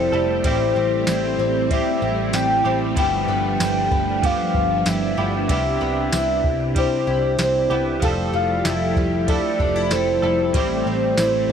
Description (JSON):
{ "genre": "dream pop", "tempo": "95 BPM", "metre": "4/4", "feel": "straight", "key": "unclear", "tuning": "A4 = 440 Hz", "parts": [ { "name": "soft octave-layered synth lead", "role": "melody", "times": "0.0-11.5 s", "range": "C5 to G5", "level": "-22 LUFS", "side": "equal", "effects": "chorus, phaser, analog delay" }, { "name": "direct-recorded clean electric guitar", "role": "accompaniment", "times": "0.0-11.5 s", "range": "G2 to A4", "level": "-28 LUFS", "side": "right 3 dB", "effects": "harmonic tremolo, ensemble chorus" }, { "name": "string machine, violas", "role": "sustained chords", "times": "0.0-11.5 s", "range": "C3 to G4", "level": "-25 LUFS", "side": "right 1 dB", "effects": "ensemble chorus" }, { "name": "picked twelve-string acoustic guitar", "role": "arpeggios", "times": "0.0-11.5 s", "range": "G2 to A4", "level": "-27 LUFS", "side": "left 4 dB", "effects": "analog chorus, analog delay" }, { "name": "vintage muted picked electric bass", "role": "bass", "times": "0.0-11.5 s", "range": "F1 to C2", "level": "-27 LUFS", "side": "equal", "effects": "none" }, { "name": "soft vintage rhythm box", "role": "drums", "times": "0.4-11.3 s", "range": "kick drum, ride cymbal, snare drum, tambourine", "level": "-25 LUFS", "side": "right 1 dB", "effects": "none" } ], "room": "moderate booth ambience, RT60 0.2 s", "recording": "none", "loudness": "-18 LUFS", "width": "side -7 dB against mid", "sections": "0.0-11.5 A section", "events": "none", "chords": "0.4 Am7; 3.0 G13; 5.5 Cmaj7; 8.0 Fmaj9; 10.5 Am7" }